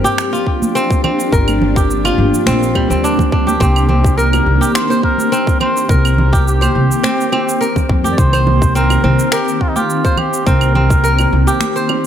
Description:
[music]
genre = organic downtempo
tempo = 105 BPM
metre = 4/4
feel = swing 53% on 16ths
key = C minor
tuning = A4 = 442 Hz
[part]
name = granular cloud pad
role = sustained chords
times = 0.0-12.1 s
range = Eb3 to G4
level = -19 LUFS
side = equal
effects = built-in reverb, sidechain pumping
[part]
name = kora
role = arpeggios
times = 0.0-12.1 s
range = G3 to C5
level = -18 LUFS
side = equal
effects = ping-pong delay
[part]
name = electronic cabasa, finger snaps and claves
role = drums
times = 0.1-12.0 s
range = none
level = -22 LUFS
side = right 4 dB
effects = none
[part]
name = electronic kick drum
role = drums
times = 0.5-11.0 s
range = none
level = -15 LUFS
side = equal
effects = none
[part]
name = congas and bongos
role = percussion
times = 0.6-12.0 s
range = none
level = -24 LUFS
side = right 2 dB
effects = none
[part]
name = upright bass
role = bass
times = 1.3-11.4 s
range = G1 to F2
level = -15 LUFS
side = equal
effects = sidechain pumping
[part]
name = trumpet with cup mute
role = melody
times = 3.6-11.6 s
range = Eb4 to D5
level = -19 LUFS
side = equal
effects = ping-pong delay
[sound]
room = light reverb, studio ambience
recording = none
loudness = -11 LUFS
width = side -9 dB against mid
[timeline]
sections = 0.0-12.1 A section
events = none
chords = 0.0 Gm7; 3.6 Cm7

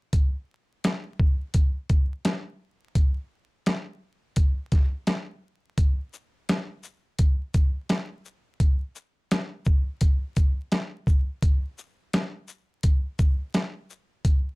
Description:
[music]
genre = hip hop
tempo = 85 BPM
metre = 4/4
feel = swing 62% on 16ths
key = none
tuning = none
[part]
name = boom bap sampler-style drum kit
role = drums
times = 0.1-14.4 s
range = hi-hat, kick drum, shaker, snare drum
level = -21 LUFS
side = equal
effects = none
[sound]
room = light reverb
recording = dark, warm production, vinyl crackle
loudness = -23 LUFS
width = side -27 dB against mid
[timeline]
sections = 0.1-5.8 A section; 5.8-14.6 B section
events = none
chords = none

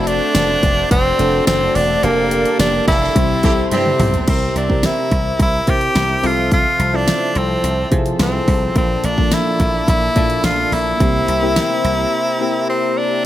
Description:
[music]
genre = 1980s-style pop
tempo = 107 BPM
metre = 4/4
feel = straight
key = unclear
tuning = A4 = 438 Hz
[part]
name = edgy tenor saxophone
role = melody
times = 0.0-13.2 s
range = Bb3 to G4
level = -18 LUFS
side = equal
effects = none
[part]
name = overdriven electric guitar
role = accompaniment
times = 0.0-4.8 s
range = G2 to D4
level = -29 LUFS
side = right 1 dB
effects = none
[part]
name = soft electric-piano-like synth keys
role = accompaniment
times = 0.0-13.3 s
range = Bb2 to E5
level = -22 LUFS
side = equal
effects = chorus
[part]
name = brassy analog pad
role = sustained chords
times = 0.0-13.2 s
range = F3 to C6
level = -27 LUFS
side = right 1 dB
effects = chorus
[part]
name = dry thumbed slap bass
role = bass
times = 0.0-12.0 s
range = E1 to C3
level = -21 LUFS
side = equal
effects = none
[part]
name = pop drum kit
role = drums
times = 0.1-12.0 s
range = crash cymbal, hi-hat, kick drum, snare drum, tambourine, toms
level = -19 LUFS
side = equal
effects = gated reverb
[part]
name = clear horn section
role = stabs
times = 2.9-4.1 s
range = Bb3 to A4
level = -26 LUFS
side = right 3 dB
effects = none
[sound]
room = light reverb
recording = none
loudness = -14 LUFS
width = side -13 dB against mid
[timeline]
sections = 0.0-4.3 A section; 4.3-13.2 B section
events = band accent 2.0-4.3; drum fill 3.7-4.3; break 12.1-13.2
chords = 0.0 D7/F; 2.0 Gmadd9/F; 3.2 C; 4.3 C7; 6.2 Fmaj7/C; 8.8 Bbmaj7; 11.0 C7

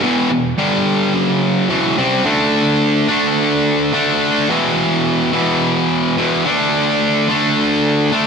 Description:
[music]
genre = rock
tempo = 108 BPM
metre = 4/4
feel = straight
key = unclear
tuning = A4 = 440 Hz
[part]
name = distorted electric guitar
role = solo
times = 0.0-8.3 s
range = E2 to D4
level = -13 LUFS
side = equal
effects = overdrive
[sound]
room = wet lush hall reverb, RT60 2.5 s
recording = bright 1980s-style digital production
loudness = -13 LUFS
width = side -6 dB against mid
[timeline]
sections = 0.0-2.3 A section; 2.3-8.3 B section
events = none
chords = 0.0 E5; 0.6 G5; 1.1 F#5; 1.7 Em; 2.3 D5; 4.5 E5; 6.4 D5

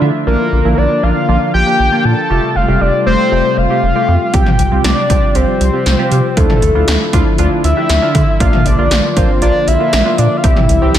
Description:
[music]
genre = synth-pop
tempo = 118 BPM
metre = 4/4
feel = straight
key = unclear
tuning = A4 = 439 Hz
[part]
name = warm analog keys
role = accompaniment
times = 0.0-11.0 s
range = A3 to E5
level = -19 LUFS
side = right 1 dB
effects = chorus
[part]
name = brassy analog pad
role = sustained chords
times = 0.0-11.0 s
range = C3 to F4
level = -18 LUFS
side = left 1 dB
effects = chorus
[part]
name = rubbery square bass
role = bass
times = 0.0-11.0 s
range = F1 to D3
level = -14 LUFS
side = equal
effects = none
[part]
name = fat analog lead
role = melody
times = 0.3-11.0 s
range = A4 to A5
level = -16 LUFS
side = left 1 dB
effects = ping-pong delay
[part]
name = 80s electronic pad drums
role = drums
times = 4.3-11.0 s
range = hi-hat, kick drum, snare drum, toms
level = -14 LUFS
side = equal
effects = gated reverb on snare and toms
[sound]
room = moderate plate reverb, RT60 1.8 s, digital ambience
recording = dreamy mix soaked in reverb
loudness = -10 LUFS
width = side -10 dB against mid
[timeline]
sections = 0.0-11.0 A section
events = synth keys fill 0.0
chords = 0.3 Bb; 2.3 Fadd9; 4.3 Csus4; 6.4 Dmadd9; 8.4 Bb; 10.4 C

